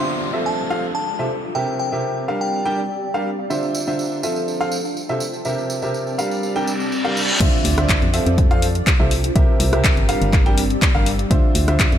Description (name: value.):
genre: piano house.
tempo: 123 BPM.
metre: 4/4.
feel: straight.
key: unclear.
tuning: A4 = 441 Hz.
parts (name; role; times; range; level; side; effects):
glassy synth bell; melody; 0.0-3.1 s; G5 to A5; -26 LUFS; left 1 dB; chorus, tape echo.
clear baby grand piano; riff; 0.0-12.0 s; C3 to G5; -22 LUFS; right 1 dB; sidechain pumping, tape echo.
downlifter, reverse cymbal and impact; sound effects; 0.0-3.5, 6.7-9.4 s; none; -26 LUFS; left 1 dB; none.
granular cloud pad; texture; 0.0-12.0 s; C4 to D5; -28 LUFS; equal; built-in reverb, sidechain pumping.
tambourine; percussion; 3.5-7.4 s; none; -31 LUFS; right 3 dB; none.
organ-like FM bass; bass; 7.4-12.0 s; G1 to F2; -21 LUFS; equal; tube saturation, sidechain pumping.
electronic kick drum; drums; 7.4-11.9 s; none; -18 LUFS; equal; none.
garage drum kit; drums; 7.4-12.0 s; crash cymbal, handclaps, hi-hat, rim click; -22 LUFS; left 2 dB; none.
room: light reverb, digital ambience.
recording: none.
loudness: -17 LUFS.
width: side -10 dB against mid.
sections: 0.0-7.4 A section; 7.4-12.0 B section.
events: reverse cymbal 6.7-7.4; drop 7.4-12.0; impact 7.4-9.4.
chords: 0.3 Fmaj7; 1.3 C7; 2.3 Gm7; 3.5 Dm9; 4.2 Fmaj7; 5.2 C7; 6.2 Gm7; 7.4 Dm9; 8.1 Fmaj7; 9.1 C7; 10.1 Gm7; 11.3 Dm9.